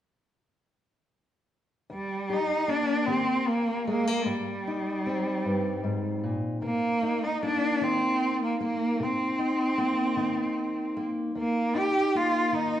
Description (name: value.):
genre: acoustic folk duo or small band.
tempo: 51 BPM (dotted quarters).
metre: 6/8.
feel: straight.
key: Eb major.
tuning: A4 = 440 Hz.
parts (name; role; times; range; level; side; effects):
rich cello; melody; 1.9-12.8 s; G3 to G4; -27 LUFS; right 1 dB; none.
fingerpicked steel-string acoustic guitar; accompaniment; 1.9-12.8 s; Eb2 to G4; -30 LUFS; left 2 dB; none.
room: wet large studio reverb, RT60 1.3 s.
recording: band playing live in one room.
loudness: -25 LUFS.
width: side -11 dB against mid.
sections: 1.9-12.8 A section.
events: none.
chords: 1.9 Eb; 4.3 Abmaj7; 6.6 Cm7; 11.4 Eb5.